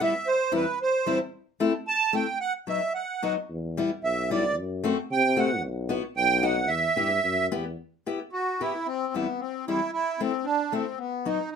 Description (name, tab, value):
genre	alpine folk, alpine dance band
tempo	112 BPM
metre	2/4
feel	rubato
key	E minor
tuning	A4 = 440 Hz
part	accordion	melody	0.0-11.6 s	B3 to A5	-25 LUFS	right 3 dB	light tremolo tuning
part	fingerpicked steel-string acoustic guitar	accompaniment	0.0-11.4 s	E2 to G4	-28 LUFS	left 5 dB	none
part	warm tuba	bass	3.5-7.8 s	B1 to C3	-29 LUFS	left 2 dB	none
room	moderate studio reverb, RT60 0.5 s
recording	minimal, uncompressed stereo recording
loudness	-24 LUFS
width	side -6 dB against mid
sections	0.0-7.8 A section; 7.8-11.6 A section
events	none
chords	0.3 C/E; 1.3 Am; 2.4 B; 3.5 Em; 4.6 F#dim; 5.6 Bsus4; 6.2 B; 6.7 Em; 8.9 C/E; 9.9 Am; 11.0 B